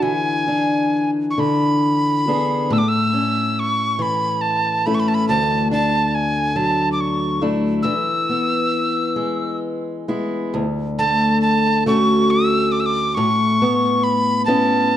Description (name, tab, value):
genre	celtic folk, Celtic slow air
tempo	46 BPM (dotted quarters)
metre	6/8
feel	uneven beats, rubato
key	unclear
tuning	A4 = 442 Hz
part	breathy tin whistle	melody	0.0-15.0 s	G#5 to E6	-20 LUFS	right 1 dB	none
part	fingerpicked steel-string acoustic guitar	accompaniment	0.0-15.0 s	D2 to G#4	-19 LUFS	left 1 dB	none
room	moderate recital hall reverb, RT60 1.6 s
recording	dark, warm production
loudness	-16 LUFS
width	side -11 dB against mid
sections	0.0-10.5 A section; 10.5-15.0 B section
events	none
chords	0.0 E7; 2.7 A; 5.3 Dadd9; 7.8 E; 10.5 Dmaj7; 13.2 Aadd9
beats	| 0.01 1.37 | 2.70 3.99 | 5.28 6.56 | 7.84 9.18 | 10.54 11.88 | 13.18 14.47